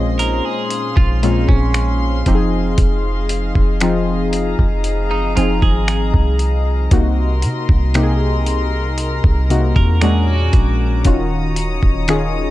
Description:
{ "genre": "contemporary R&B", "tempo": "58 BPM", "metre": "4/4", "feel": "straight", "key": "Bb minor", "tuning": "A4 = 440 Hz", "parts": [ { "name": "warm analog keys", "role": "accompaniment", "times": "0.0-12.5 s", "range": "Bb2 to Ab4", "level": "-20 LUFS", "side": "left 1 dB", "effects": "chorus" }, { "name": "warm symphonic string section", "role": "sustained chords", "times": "0.0-12.5 s", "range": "Ab4 to Eb6", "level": "-25 LUFS", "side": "left 4 dB", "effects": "none" }, { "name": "warm 808-style bass", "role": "bass", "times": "0.0-12.5 s", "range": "Eb1 to C3", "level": "-18 LUFS", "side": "equal", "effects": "none" }, { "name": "clean electric guitar", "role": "arpeggios", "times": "0.2-11.0 s", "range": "Db4 to Bb4", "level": "-25 LUFS", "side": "right 6 dB", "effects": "spring reverb, analog delay" }, { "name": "dusty soul sampler-style drum kit", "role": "drums", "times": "0.2-12.3 s", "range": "finger snaps, hi-hat, kick drum", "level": "-16 LUFS", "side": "equal", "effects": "none" } ], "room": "little or no reverb", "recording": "dark, warm production", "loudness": "-14 LUFS", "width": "side -16 dB against mid", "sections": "0.0-12.5 A section", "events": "none", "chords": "0.0 Bbm11; 2.3 Fm7; 6.9 Cm7b5; 10.0 Bb7alt; 11.1 Ebm9", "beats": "0.71 1.74 | 2.78 3.81 4.85 5.88 | 6.92 7.95 8.98 10.02 | 11.05 12.09" }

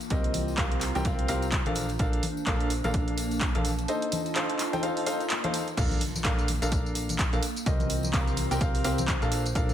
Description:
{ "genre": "piano house", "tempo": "127 BPM", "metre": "4/4", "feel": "swing 59% on 16ths", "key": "Bb major", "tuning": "A4 = 440 Hz", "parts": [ { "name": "punchy analog drum machine", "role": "drums", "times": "0.0-9.7 s", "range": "crash cymbal, handclaps, hi-hat, tambourine", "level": "-33 LUFS", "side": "right 1 dB", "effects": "none" }, { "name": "tambourine and congas", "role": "percussion", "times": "0.0-9.7 s", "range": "none", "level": "-37 LUFS", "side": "left 4 dB", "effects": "none" }, { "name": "warbly tape-like pad", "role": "texture", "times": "0.0-9.7 s", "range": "Bb3 to Bb5", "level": "-36 LUFS", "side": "right 1 dB", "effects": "chorus, built-in reverb, sidechain pumping" }, { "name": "clear concert grand piano", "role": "riff", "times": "0.1-9.7 s", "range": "C4 to G5", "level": "-31 LUFS", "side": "equal", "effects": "sidechain pumping, dub echo" }, { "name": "plucky analog bass", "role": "bass", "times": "0.1-9.7 s", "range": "Bb1 to C2", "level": "-32 LUFS", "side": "equal", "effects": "sidechain pumping" }, { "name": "electronic kick drum", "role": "drums", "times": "0.1-9.7 s", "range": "none", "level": "-29 LUFS", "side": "equal", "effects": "none" }, { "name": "swell and impact", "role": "sound effects", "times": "5.0-7.7 s", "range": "none", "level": "-38 LUFS", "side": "equal", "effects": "none" } ], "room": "light reverb, digital ambience", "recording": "none", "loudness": "-25 LUFS", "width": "side -10 dB against mid", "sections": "0.0-5.8 A section; 5.8-9.7 B section", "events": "swell 5.0-5.8; drop 5.8-9.7; impact 5.8-7.7", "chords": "0.0 C7sus4; 1.8 Bbmaj7; 3.9 F7; 5.8 Bbmaj7; 7.4 C7sus4", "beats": "| 0.10 0.58 1.05 1.52 | 2.00 2.47 2.94 3.41 | 3.88 4.36 4.83 5.30 | 5.77 6.25 6.72 7.19 | 7.66 8.14 8.61 9.08 | 9.55" }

